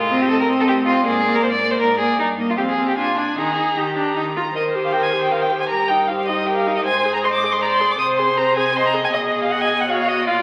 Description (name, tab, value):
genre	quick classical-period movement for string quartet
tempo	157 BPM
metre	3/4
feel	straight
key	Eb major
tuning	A4 = 440 Hz
part	rich violin	second line	0.0-10.4 s	D4 to Eb5	-24 LUFS	equal	none
part	clear cello	bass	0.0-10.4 s	F2 to Eb3	-33 LUFS	equal	none
part	rich violin	melody	0.1-10.4 s	D5 to Eb6	-24 LUFS	equal	none
part	rich viola	accompaniment	0.1-10.4 s	Bb3 to C5	-24 LUFS	equal	none
room	wet recital hall reverb, RT60 1.4 s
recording	very old 78 rpm record, vinyl crackle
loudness	-19 LUFS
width	mono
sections	0.0-4.6 A section; 4.6-10.4 A section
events	none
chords	0.0 Adim; 1.1 Bb7/Ab; 2.2 Eb/G; 2.6 Fm; 3.0 Bb7; 3.4 Eb; 5.7 Eb/G; 6.9 Ab; 8.0 Ab/C; 9.1 Abm/Cb